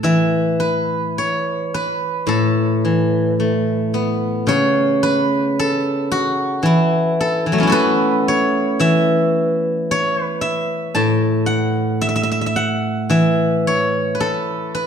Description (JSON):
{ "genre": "chinese traditional, Chinese solo plucked strings", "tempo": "55 BPM", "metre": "4/4", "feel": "rubato", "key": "A gong mode", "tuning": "A4 = 441 Hz", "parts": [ { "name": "steel-string zither", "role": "solo", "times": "0.0-14.9 s", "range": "A2 to A5", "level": "-16 LUFS", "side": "equal", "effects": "none" } ], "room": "moderate recital hall reverb, RT60 1.5 s", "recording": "dark, warm production", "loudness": "-16 LUFS", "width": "side -7 dB against mid", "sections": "0.0-14.9 A section", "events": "none", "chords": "none" }